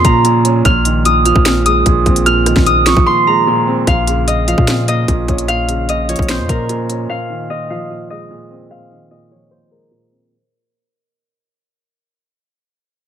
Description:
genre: hip hop, trap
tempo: 149 BPM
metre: 4/4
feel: half-time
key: Bb minor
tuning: A4 = 440 Hz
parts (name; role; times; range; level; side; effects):
- Celtic harp; melody; 0.0-11.8 s; Bb4 to F6; -16 LUFS; equal; low-pass filter
- dark grand piano; accompaniment; 0.0-10.3 s; Bb2 to Db4; -17 LUFS; right 3 dB; low-pass filter
- long sustained 808-style bass; bass; 0.0-7.1 s; Bb1 to Bb2; -17 LUFS; left 1 dB; none
- trap drum kit; drums; 0.0-7.0 s; finger snaps, hi-hat, kick drum, rim click, snare drum; -15 LUFS; left 1 dB; none
room: light reverb, small room ambience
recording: none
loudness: -11 LUFS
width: side -9 dB against mid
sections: 0.0-3.9 A section; 3.9-10.3 B section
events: drums muted 3.1-3.9; fade-out 3.9-10.3; filter sweep 3.9-10.3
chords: 0.0 Bbm; 0.7 Fm7/Bb; 3.9 Bbm; 7.1 Fm7/Bb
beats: 0.25 | 0.65 1.05 1.46 1.86 | 2.26 2.67 3.07 3.47 | 3.87 4.28 4.68 5.08 | 5.48 5.89 6.29 6.69 | 7.09 7.50 7.90 8.30 | 8.71 9.11 9.51 9.91

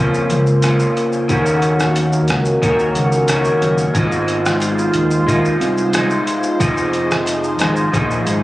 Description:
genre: indie pop, bedroom pop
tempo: 90 BPM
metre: 4/4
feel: straight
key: unclear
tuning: A4 = 439 Hz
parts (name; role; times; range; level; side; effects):
- electric guitar through a small old amp; accompaniment; 0.0-8.4 s; Eb3 to C5; -17 LUFS; equal; lush chorus, warbly pitch drift
- phased analog pad; sustained chords; 0.0-8.4 s; Db3 to C5; -21 LUFS; right 1 dB; phaser, chorus
- fat analog bass; bass; 0.0-8.4 s; F1 to F2; -19 LUFS; equal; none
- lo-fi sampler-style drum kit; drums; 0.1-8.4 s; hi-hat, kick drum, rim click, shaker; -22 LUFS; equal; none
- group handclap; percussion; 0.6-7.4 s; none; -36 LUFS; right 2 dB; none
room: light reverb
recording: recorded on a phone in the room, club reverb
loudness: -14 LUFS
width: side -17 dB against mid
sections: 0.0-8.4 A section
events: none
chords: 0.0 Bbmadd9; 1.3 Ebm7; 3.9 Ab6; 6.6 Fm7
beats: 0.63 | 1.29 1.96 2.62 3.29 | 3.95 4.61 5.28 5.94 | 6.60 7.27 7.93

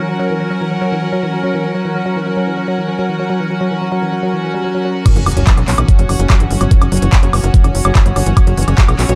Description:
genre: psychedelic trance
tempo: 145 BPM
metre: 4/4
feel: straight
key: F# major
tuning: A4 = 440 Hz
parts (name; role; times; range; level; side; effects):
- evolving wavetable pad; sustained chords; 0.0-9.2 s; A#4 to C#5; -28 LUFS; equal; phaser, built-in reverb, sidechain pumping
- woody wave-folded pluck; riff; 0.0-9.2 s; E3 to G3; -21 LUFS; equal; chorus, sidechain pumping, dub echo
- clear studio string section; texture; 0.0-9.2 s; C#4 to F#5; -24 LUFS; equal; sidechain pumping
- big-room dance drum kit; drums; 5.1-9.2 s; crash cymbal, handclaps, hi-hat, woodblock; -22 LUFS; equal; none
- electronic kick drum; drums; 5.1-8.9 s; none; -12 LUFS; equal; none
- sub drop; sound effects; 5.1-6.7 s; none; -25 LUFS; equal; none
- tight sequencer bass; bass; 5.2-9.2 s; F#1 to B1; -17 LUFS; equal; none
room: light reverb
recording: dark, warm production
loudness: -14 LUFS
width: mono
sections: 0.0-5.1 A section; 5.1-9.2 B section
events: drop 5.1-9.2; impact 5.1-6.7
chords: 0.0 F#5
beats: | 0.09 0.51 0.92 1.33 | 1.75 2.16 2.57 2.99 | 3.40 3.82 4.23 4.64 | 5.06 5.47 5.88 6.30 | 6.71 7.13 7.54 7.95 | 8.37 8.78

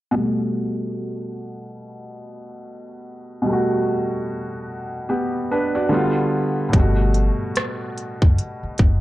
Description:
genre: lo-fi hip hop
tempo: 73 BPM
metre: 4/4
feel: swing 58% on 16ths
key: G major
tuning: A4 = 440 Hz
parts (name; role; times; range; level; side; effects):
- felt-muted upright piano; accompaniment; 0.1-9.0 s; A2 to D5; -22 LUFS; equal; cassette tape, low-pass filter
- upright bass; bass; 6.7-9.0 s; F#1 to G1; -20 LUFS; equal; none
- organic electronic drum kit; drums; 6.7-9.0 s; hi-hat, kick drum, rim click; -17 LUFS; equal; none
room: light reverb, studio reverb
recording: dark, warm production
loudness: -19 LUFS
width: side -16 dB against mid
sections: 0.2-6.7 A section; 6.7-9.0 B section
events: filter sweep on felt piano 0.2-6.7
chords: 0.2 Gmaj9; 5.9 G7; 6.7 Gmaj9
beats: | 0.16 0.98 1.80 2.62 | 3.44 4.27 5.09 5.91 | 6.73 7.55 8.38

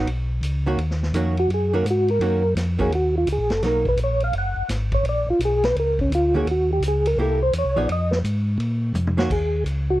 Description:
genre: soul jazz organ trio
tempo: 169 BPM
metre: 4/4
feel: swing 64% on 8ths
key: Eb minor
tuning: A4 = 439 Hz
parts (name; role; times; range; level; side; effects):
- archtop guitar, miked and amplified; accompaniment; 0.0-3.8, 6.3-9.3 s; Eb3 to Ab4; -25 LUFS; right 2 dB; none
- mellow tonewheel organ; bass; 0.0-10.0 s; Gb1 to Bb2; -23 LUFS; equal; slow rotary speaker
- vintage drum kit; drums; 0.1-9.8 s; crash cymbal, hi-hat, kick drum, ride cymbal, snare drum, toms; -32 LUFS; equal; none
- percussive tonewheel organ; melody; 1.4-10.0 s; Db4 to F#5; -21 LUFS; equal; slow rotary speaker, chorus vibrato
room: studio ambience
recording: dry, close 1970s-style studio recording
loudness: -19 LUFS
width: side -16 dB against mid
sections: 0.0-9.3 A section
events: tonewheel organ solo 0.0-9.3; drum fill 8.9-9.3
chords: 0.0 Abm7 (rootless); 0.8 Ebm7; 3.6 Bmaj7; 5.0 Bb; 6.5 Gbsus2; 7.2 C7; 7.9 Fm7; 8.6 Bb5; 9.3 Eb7(no3)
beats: 0.07 0.43 | 0.78 1.14 1.49 1.85 | 2.21 2.56 2.92 3.27 | 3.63 3.98 4.34 4.69 | 5.05 5.40 5.75 6.11 | 6.46 6.82 7.17 7.53 | 7.88 8.24 8.59 8.94 | 9.30 9.65

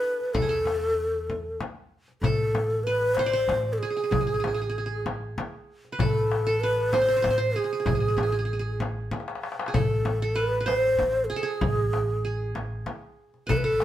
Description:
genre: Arabic maqam ensemble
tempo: 96 BPM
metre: 3/4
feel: straight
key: A maqam nahawand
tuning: A4 = 440 Hz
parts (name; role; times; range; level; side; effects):
- breathy mellow low ney; melody; 0.0-13.8 s; G#4 to C5; -25 LUFS; equal; none
- qanun; second line; 0.0-13.8 s; D4 to D5; -32 LUFS; right 3 dB; none
- darbuka; percussion; 0.2-13.8 s; none; -31 LUFS; left 2 dB; none
- upright bass; bass; 0.3-13.8 s; A1 to E2; -30 LUFS; equal; none
- frame drum; percussion; 0.3-13.8 s; none; -32 LUFS; left 2 dB; none
room: light reverb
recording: band playing live in one room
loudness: -23 LUFS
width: side -12 dB against mid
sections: 0.0-2.2 A section; 2.2-13.8 B section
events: drum fill 9.1-9.7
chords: none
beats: | 0.35 0.98 1.61 | 2.23 2.86 3.49 | 4.11 4.74 5.36 | 5.99 6.61 7.24 | 7.86 8.49 9.11 | 9.74 10.36 10.99 | 11.61 12.24 12.86 | 13.49

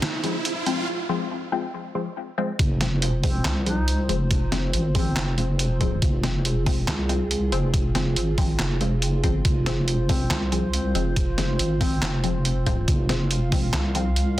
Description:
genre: deep dubstep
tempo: 140 BPM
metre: 4/4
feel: swing 59% on 16ths, half-time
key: F minor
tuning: A4 = 441 Hz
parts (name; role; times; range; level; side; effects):
- dark analog pad; sustained chords; 0.0-14.4 s; F4 to F5; -32 LUFS; right 2 dB; chorus
- deep soft wobble bass; bass; 0.0-14.4 s; F1 to C2; -24 LUFS; equal; chorus, high-pass filter
- trip hop sampler-style drum kit; drums; 0.0-14.4 s; handclaps, hi-hat, snare drum; -28 LUFS; right 1 dB; soft clipping on snare
- riser; sound effects; 0.0-0.9 s; none; -29 LUFS; right 3 dB; none
- filtered dub chord stab; stabs; 0.2-14.4 s; F3 to C4; -30 LUFS; left 4 dB; phaser, cassette tape, dub echo
- electronic kick drum; drums; 2.6-13.6 s; none; -23 LUFS; equal; none
- warm duduk; melody; 3.2-5.4, 10.1-12.1 s; C4 to Eb4; -38 LUFS; equal; dub echo
room: light reverb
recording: dense, heavily limited modern master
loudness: -21 LUFS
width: side -15 dB against mid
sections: 0.0-2.6 A section; 2.6-14.4 B section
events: build-up 0.0-2.6; riser 0.0-0.9; break 0.9-2.6; drop 2.6-14.4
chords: 0.0 Fm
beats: 0.02 0.45 | 0.88 1.31 1.74 2.17 | 2.59 3.02 3.45 3.88 | 4.31 4.74 5.17 5.59 | 6.02 6.45 6.88 7.31 | 7.74 8.16 8.59 9.02 | 9.45 9.88 10.31 10.74 | 11.16 11.59 12.02 12.45 | 12.88 13.31 13.74 14.16

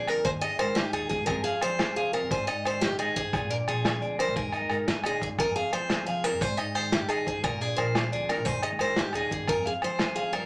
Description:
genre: highlife guitar band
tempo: 117 BPM (dotted quarters)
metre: 12/8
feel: straight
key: F minor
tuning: A4 = 439 Hz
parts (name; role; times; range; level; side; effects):
- picked steel-string acoustic guitar; melody; 0.0-10.5 s; G4 to Eb5; -32 LUFS; equal; none
- nylon-string guitar; accompaniment; 0.0-10.5 s; F2 to Ab4; -41 LUFS; equal; none
- electric guitar through a small old amp; arpeggios; 0.0-10.5 s; Bb4 to Ab5; -35 LUFS; equal; none
- upright bass; bass; 0.0-10.5 s; Bb1 to F3; -39 LUFS; equal; none
- crunchy breakbeat drum kit; drums; 0.1-10.4 s; hi-hat, kick drum, snare drum; -34 LUFS; equal; none
- agogo bells; percussion; 0.1-10.5 s; none; -37 LUFS; equal; none
room: wet studio ambience, RT60 0.5 s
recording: none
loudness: -28 LUFS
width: mono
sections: 0.0-10.5 A section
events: none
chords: 0.3 Ebsus4; 1.3 Fm; 2.3 Ab; 3.3 Bb7; 4.4 Ebsus4; 5.4 Fm; 6.4 Ab; 7.4 Bb7; 8.5 Ebsus4; 9.5 Fm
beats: 0.25 0.77 | 1.28 1.80 2.31 2.82 | 3.34 3.85 4.36 4.88 | 5.39 5.90 6.41 6.92 | 7.44 7.95 8.46 8.97 | 9.48 9.99

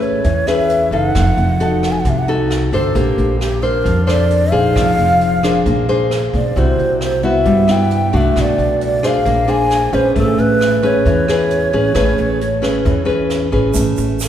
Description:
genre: bossa nova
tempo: 133 BPM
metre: 4/4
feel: straight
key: unclear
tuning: A4 = 441 Hz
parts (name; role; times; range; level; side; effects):
- breathy mellow long shakuhachi; melody; 0.0-14.3 s; G4 to Ab5; -18 LUFS; right 1 dB; none
- nylon-string guitar; accompaniment; 0.0-14.3 s; B2 to C5; -16 LUFS; left 1 dB; none
- upright bass; bass; 0.0-14.3 s; F1 to G2; -19 LUFS; equal; none
- jazz brush drum kit; drums; 0.0-14.3 s; hi-hat, kick drum, rim click; -24 LUFS; right 1 dB; none
- egg shaker; percussion; 13.7-14.3 s; none; -26 LUFS; right 7 dB; none
room: wet church reverb, RT60 3.1 s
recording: recorded in a church or concert hall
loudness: -12 LUFS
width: side -10 dB against mid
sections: 0.0-13.8 A section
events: none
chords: 0.0 Amaj9; 1.1 F7b9; 3.0 Bbmaj9; 4.8 Fm7; 5.7 Bb9; 6.6 Cmaj9#11; 8.4 Bm7; 9.3 Bb9; 10.2 Amaj9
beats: 0.25 0.70 | 1.15 1.60 2.05 2.50 | 2.95 3.40 3.85 4.30 | 4.75 5.20 5.65 6.10 | 6.55 7.00 7.45 7.90 | 8.35 8.80 9.25 9.70 | 10.15 10.60 11.05 11.50 | 11.95 12.40 12.85 13.30 | 13.75 14.20

